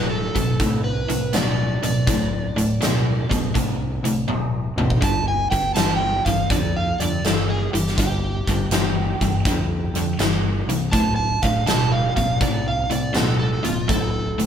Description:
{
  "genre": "blues rock power trio and southern rock",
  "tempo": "81 BPM",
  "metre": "4/4",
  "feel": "swing 67% on 8ths",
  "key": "unclear",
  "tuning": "A4 = 436 Hz",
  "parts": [
    { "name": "overdriven slide guitar", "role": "melody", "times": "0.0-14.5 s", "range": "F4 to A5", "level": "-26 LUFS", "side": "right 3 dB", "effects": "none" },
    { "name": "overdriven electric guitar", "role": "riff", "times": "0.0-14.5 s", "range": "D2 to E3", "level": "-23 LUFS", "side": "equal", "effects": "none" },
    { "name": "growling picked electric bass", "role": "bass", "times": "0.0-14.5 s", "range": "D1 to F2", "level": "-26 LUFS", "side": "equal", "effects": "overdrive" },
    { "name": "huge arena drum kit", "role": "drums", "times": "0.4-14.5 s", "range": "hi-hat, kick drum, snare drum, toms", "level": "-23 LUFS", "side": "equal", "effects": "none" }
  ],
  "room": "light reverb",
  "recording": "band playing live in one room, faint mains hum",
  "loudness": "-18 LUFS",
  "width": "side -8 dB against mid",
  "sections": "0.0-14.5 A section",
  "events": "drum fill 4.3-5.0",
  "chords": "0.0 D5; 5.0 G5; 10.9 D5"
}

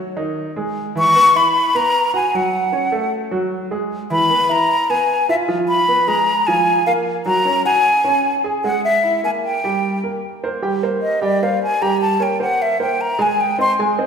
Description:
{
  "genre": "jazz",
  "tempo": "152 BPM",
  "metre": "4/4",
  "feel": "straight",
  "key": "C minor from 10.2 s",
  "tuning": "A4 = 442 Hz",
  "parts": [
    { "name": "warm grand piano", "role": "accompaniment", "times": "0.0-14.1 s", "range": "D#3 to G#5", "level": "-21 LUFS", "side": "right 2 dB", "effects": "none" },
    { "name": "breathy mellow silver concert flute", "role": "melody", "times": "1.0-13.7 s", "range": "D5 to C#6", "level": "-16 LUFS", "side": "left 1 dB", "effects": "none" }
  ],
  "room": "wet scoring stage reverb, RT60 1.7 s",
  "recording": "recorded in a church or concert hall",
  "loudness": "-15 LUFS",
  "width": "side -6 dB against mid",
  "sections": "0.0-10.2 A section; 10.2-14.1 B section",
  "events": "flute solo 10.2-14.1",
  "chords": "0.0 G#5; 0.8 C#m7; 2.3 F#m; 3.1 F#madd9; 3.9 E; 5.5 Fdim; 6.3 A#5; 7.1 F#add9; 8.6 F#9/G#; 9.4 Gm; 10.2 C5; 11.8 Gdim; 12.6 Abmaj9; 13.4 Abmaj7"
}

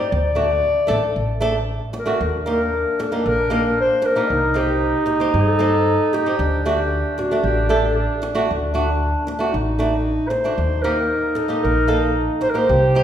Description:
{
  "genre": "klezmer",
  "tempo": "114 BPM",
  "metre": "4/4",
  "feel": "straight",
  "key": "unclear",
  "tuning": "A4 = 439 Hz",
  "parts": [
    { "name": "dark clarinet", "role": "melody", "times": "0.0-13.0 s", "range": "D4 to D5", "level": "-21 LUFS", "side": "left 2 dB", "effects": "none" },
    { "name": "flamenco guitar", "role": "accompaniment", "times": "0.0-13.0 s", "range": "A3 to A4", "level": "-23 LUFS", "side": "right 2 dB", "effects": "none" },
    { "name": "upright bass", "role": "bass", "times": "0.1-13.0 s", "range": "A1 to G2", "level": "-23 LUFS", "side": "equal", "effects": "none" },
    { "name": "clear trombone", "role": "second line", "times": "2.2-13.0 s", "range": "D4 to G4", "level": "-23 LUFS", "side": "right 1 dB", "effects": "none" }
  ],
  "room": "wet recital hall reverb, RT60 1.6 s",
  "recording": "recorded in a church or concert hall",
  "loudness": "-17 LUFS",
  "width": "side -10 dB against mid",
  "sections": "0.0-2.2 A section; 2.2-13.0 B section",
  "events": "none",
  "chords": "0.1 D; 2.2 Eb; 4.3 Cm; 6.4 D; 10.6 Eb"
}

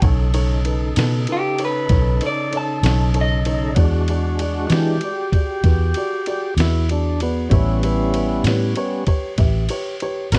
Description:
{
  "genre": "slow blues",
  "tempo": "64 BPM (dotted quarters)",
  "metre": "12/8",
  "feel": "straight",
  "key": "unclear",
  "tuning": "A4 = 437 Hz",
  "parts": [
    { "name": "electric guitar through a small old amp", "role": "melody", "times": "0.0-3.8 s", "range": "G4 to A5", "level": "-26 LUFS", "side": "equal", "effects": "plate reverb" },
    { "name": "dark baby grand piano", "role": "accompaniment", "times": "0.0-10.4 s", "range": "D#4 to E5", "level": "-29 LUFS", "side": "equal", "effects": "plate reverb" },
    { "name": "tonewheel organ", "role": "sustained chords", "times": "0.0-10.4 s", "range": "C#3 to A#4", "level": "-27 LUFS", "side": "equal", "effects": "slow rotary speaker, overdrive, plate reverb" },
    { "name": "vintage muted fingered electric bass", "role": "bass", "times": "0.0-10.4 s", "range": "A1 to E3", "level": "-21 LUFS", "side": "equal", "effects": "none" },
    { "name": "lo-fi sampler-style drum kit", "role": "drums", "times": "0.0-10.4 s", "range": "kick drum, ride cymbal, snare drum", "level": "-25 LUFS", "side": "equal", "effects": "none" }
  ],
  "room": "light reverb",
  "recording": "none",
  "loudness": "-19 LUFS",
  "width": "mono",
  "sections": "0.0-3.8 A section; 3.8-10.4 A section",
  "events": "clean electric guitar solo 0.0-3.8; tonewheel organ solo 3.8-10.4",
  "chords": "0.0 B7; 3.8 E7; 7.5 A7"
}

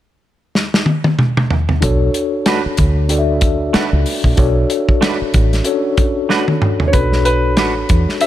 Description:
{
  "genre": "lush 1970s-style soul",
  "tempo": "94 BPM",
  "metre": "4/4",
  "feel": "swing 58% on 16ths",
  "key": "B minor",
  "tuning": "A4 = 442 Hz",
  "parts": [
    { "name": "warm soul drum kit", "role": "drums", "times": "0.6-8.3 s", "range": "hi-hat, kick drum, snare drum, toms", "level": "-15 LUFS", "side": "equal", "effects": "none" },
    { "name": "mellow tine electric piano", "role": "accompaniment", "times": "1.8-8.3 s", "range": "C#4 to E5", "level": "-18 LUFS", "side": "left 3 dB", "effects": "medium stereo tremolo" },
    { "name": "deep dub fingered electric bass", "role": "bass", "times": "1.8-8.1 s", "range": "A1 to E2", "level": "-16 LUFS", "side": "equal", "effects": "none" },
    { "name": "semi-hollow electric guitar", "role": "riff", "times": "2.5-7.7 s", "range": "A3 to B4", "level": "-22 LUFS", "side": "right 6 dB", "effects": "ensemble chorus" },
    { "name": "warm baby grand piano", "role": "melody", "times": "6.9-8.3 s", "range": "B4 to E5", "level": "-18 LUFS", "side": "equal", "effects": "none" }
  ],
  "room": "small room ambience",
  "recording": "none",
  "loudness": "-13 LUFS",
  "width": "side -12 dB against mid",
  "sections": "0.0-1.8 A section; 1.8-6.9 B section; 6.9-8.3 C section",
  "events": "drum fill 0.5-1.8, 6.3-6.9",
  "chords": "0.0 N.C.; 1.8 Bm7"
}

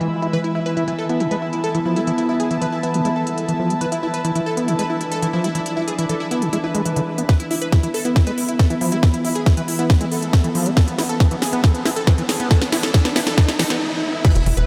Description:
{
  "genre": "psychedelic trance",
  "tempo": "138 BPM",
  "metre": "4/4",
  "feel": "straight",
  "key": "unclear",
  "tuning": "A4 = 440 Hz",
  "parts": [
    { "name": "evolving wavetable pad", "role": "sustained chords", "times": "0.0-14.7 s", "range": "E3 to D4", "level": "-28 LUFS", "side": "equal", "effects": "chorus, built-in reverb, sidechain pumping" },
    { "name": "overdriven acid bass", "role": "riff", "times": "0.0-14.5 s", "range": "D3 to E4", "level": "-27 LUFS", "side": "equal", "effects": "sidechain pumping, delay" },
    { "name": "techno drum kit", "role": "drums", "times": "0.0-14.7 s", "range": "crash cymbal, hi-hat, snare drum", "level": "-27 LUFS", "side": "equal", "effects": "low-pass filter on hats, low-pass filter on snare, low-pass filter on cymbals, low-pass filter on room" },
    { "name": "warm studio string section", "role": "texture", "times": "0.0-14.7 s", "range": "E4 to B5", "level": "-32 LUFS", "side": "equal", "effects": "sidechain pumping" },
    { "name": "supersaw stab", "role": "melody", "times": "0.3-14.6 s", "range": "B3 to B4", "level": "-28 LUFS", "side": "equal", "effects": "phaser, sidechain pumping, delay" },
    { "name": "electronic kick drum", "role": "drums", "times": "7.3-14.3 s", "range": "none", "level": "-16 LUFS", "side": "equal", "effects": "overdrive" },
    { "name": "riser and impact", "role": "sound effects", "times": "11.2-14.7 s", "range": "none", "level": "-30 LUFS", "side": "equal", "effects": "none" },
    { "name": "tight sequencer bass", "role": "bass", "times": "14.4-14.6 s", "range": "E1", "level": "-20 LUFS", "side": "equal", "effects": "none" }
  ],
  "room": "moderate huge ambient reverb, RT60 6.2 s",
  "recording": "dreamy mix soaked in reverb",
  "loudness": "-19 LUFS",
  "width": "mono",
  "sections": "0.0-7.3 A section; 7.3-14.2 B section",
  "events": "build-up 7.3-14.2; drum fill 7.3-13.8; filter sweep on acid bass 7.3-14.2; filter sweep on ambient pad 7.3-14.2; stop 13.8-14.2; impact 14.2-14.7",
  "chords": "0.0 E5"
}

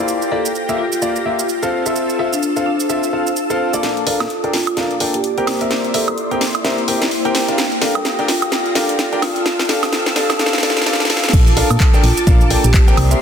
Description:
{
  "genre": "piano house",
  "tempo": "128 BPM",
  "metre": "4/4",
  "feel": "swing 59% on 16ths",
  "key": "unclear",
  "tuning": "A4 = 440 Hz",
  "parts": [
    { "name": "analog string pad", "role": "sustained chords", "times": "0.0-13.2 s", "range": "F4 to Bb6", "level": "-26 LUFS", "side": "left 1 dB", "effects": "ensemble chorus, vintage 12-bit sampler grit, sidechain pumping" },
    { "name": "clear grand piano", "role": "riff", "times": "0.0-13.2 s", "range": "Bb3 to G5", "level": "-21 LUFS", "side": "left 1 dB", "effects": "sidechain pumping, low-pass filter" },
    { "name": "warbly tape-like pad", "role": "texture", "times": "0.0-13.2 s", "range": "Bb3 to E6", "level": "-24 LUFS", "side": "equal", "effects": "chorus, built-in reverb, sidechain pumping" },
    { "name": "house drum kit", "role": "drums", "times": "0.1-13.2 s", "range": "crash cymbal, handclaps, hi-hat, shaker, snare drum, woodblock", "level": "-20 LUFS", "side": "right 1 dB", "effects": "studio reverb, soft clipping on snare" },
    { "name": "marimba with soft mallets", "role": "melody", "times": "0.3-12.7 s", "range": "D4 to A4", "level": "-23 LUFS", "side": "equal", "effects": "tape echo" },
    { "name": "solid FM bass", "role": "bass", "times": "3.8-13.1 s", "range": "F1 to Bb2", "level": "-18 LUFS", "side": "equal", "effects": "sidechain pumping, high-pass filter" },
    { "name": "electronic kick drum", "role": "drums", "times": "11.3-12.8 s", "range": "none", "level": "-13 LUFS", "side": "equal", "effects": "studio reverb" }
  ],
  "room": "moderate lush hall reverb, RT60 2.1 s",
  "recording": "dense, heavily limited modern master, high-pass filter",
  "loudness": "-14 LUFS",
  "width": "side -8 dB against mid",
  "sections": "0.0-3.8 A section; 3.8-11.3 B section; 11.3-13.2 C section",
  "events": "build-up 3.8-11.3; drum fill 3.8-11.3; filter sweep on grand piano 3.8-11.3; filter sweep on analog synth pad 3.8-11.3; drop 11.3-13.2",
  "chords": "0.0 Bbmaj7; 5.5 C7; 7.6 Gm7; 9.2 Fmaj7; 11.3 Bbmaj7"
}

